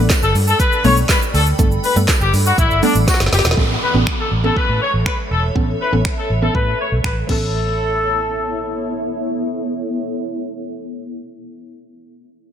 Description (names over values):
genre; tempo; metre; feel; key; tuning
dance-pop; 121 BPM; 4/4; straight; A mixolydian; A4 = 439 Hz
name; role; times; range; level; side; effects
mallet-like synth pluck; accompaniment; 0.0-11.3 s; E3 to A4; -22 LUFS; right 1 dB; chorus, phaser, sidechain pumping, low-pass filter
granular cloud pad; sustained chords; 0.0-11.3 s; B3 to B5; -26 LUFS; equal; built-in reverb, wide subtle chorus, sidechain pumping, low-pass filter
vintage muted fingered electric bass; bass; 0.0-11.3 s; E1 to A2; -18 LUFS; equal; sidechain pumping
deep house drum kit; drums; 0.1-7.4 s; crash cymbal, finger snaps, handclaps, hi-hat, kick drum, shaker, snare drum; -18 LUFS; equal; gated reverb
tambourine; percussion; 0.1-3.2 s; none; -28 LUFS; right 10 dB; none
clear horn section; melody; 0.2-9.0 s; D4 to C#5; -20 LUFS; left 3 dB; sidechain pumping, low-pass filter, ping-pong delay
downlifter; sound effects; 3.6-7.5 s; none; -27 LUFS; right 1 dB; none
room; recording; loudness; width
light reverb; bright 1980s-style digital production; -15 LUFS; side -9 dB against mid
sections
0.0-3.6 A section; 3.6-7.5 B section; 7.5-11.5 C section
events
drop 0.0-3.6; drum fill 3.1-3.6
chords
0.0 Gadd9; 3.6 Aadd9